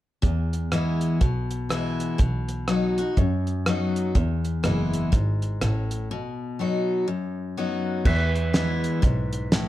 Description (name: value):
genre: honky-tonk and classic country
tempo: 123 BPM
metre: 4/4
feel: swing 61% on 8ths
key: E major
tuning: A4 = 439 Hz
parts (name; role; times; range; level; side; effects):
- picked steel-string acoustic guitar; accompaniment; 0.2-9.7 s; E2 to F#4; -26 LUFS; left 2 dB; none
- warm double bass; bass; 0.2-9.7 s; F#1 to F#2; -27 LUFS; equal; none
- cloth-damped thuddy drum kit; drums; 0.2-9.7 s; crash cymbal, hi-hat, kick drum, rim click, snare drum; -23 LUFS; right 1 dB; none
- pedal steel guitar; sustained chords; 8.1-9.7 s; B4 to E5; -30 LUFS; right 4 dB; none
room: little or no reverb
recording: dark, warm production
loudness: -22 LUFS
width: side -14 dB against mid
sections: 0.2-8.1 A section; 8.1-9.7 B section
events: break 6.1-8.1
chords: 0.2 E; 2.2 B; 4.1 E; 6.1 B; 8.1 E